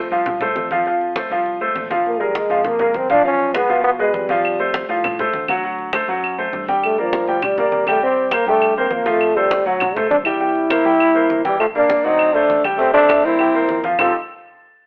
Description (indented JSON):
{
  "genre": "Afro-Cuban jazz",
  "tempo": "201 BPM",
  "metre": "4/4",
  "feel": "straight",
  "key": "unclear",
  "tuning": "A4 = 439 Hz",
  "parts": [
    { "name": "breathy trombone", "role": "melody", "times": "0.0-14.1 s", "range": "F3 to F4", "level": "-19 LUFS", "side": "equal", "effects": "none" },
    { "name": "clear grand piano", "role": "accompaniment", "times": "0.0-14.1 s", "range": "F3 to G5", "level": "-22 LUFS", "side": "equal", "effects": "none" },
    { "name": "fretless electric bass", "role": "bass", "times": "0.0-14.1 s", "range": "F1 to Cb3", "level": "-37 LUFS", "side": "equal", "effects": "none" },
    { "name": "congas", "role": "percussion", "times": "0.1-14.1 s", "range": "none", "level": "-31 LUFS", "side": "equal", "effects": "none" },
    { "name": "claves", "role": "percussion", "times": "4.4-14.1 s", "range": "none", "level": "-27 LUFS", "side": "equal", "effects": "none" },
    { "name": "growling tenor saxophone", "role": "second line", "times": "11.4-14.1 s", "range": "E3 to C4", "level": "-25 LUFS", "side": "equal", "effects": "none" }
  ],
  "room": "moderate stone room reverb, RT60 1.0 s",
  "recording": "band playing live in one room, telephone sound",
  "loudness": "-18 LUFS",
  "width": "mono",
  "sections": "0.0-11.6 A section; 11.6-14.0 B section",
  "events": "none",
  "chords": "0.0 F; 2.1 Bb5; 3.2 Fdim; 4.4 F69; 5.6 D7; 6.8 Gm7; 8.0 C5; 9.2 F69; 9.8 D7; 10.4 C7; 11.6 Gm; 12.2 D7; 12.8 Am7; 13.4 C7; 14.0 F9"
}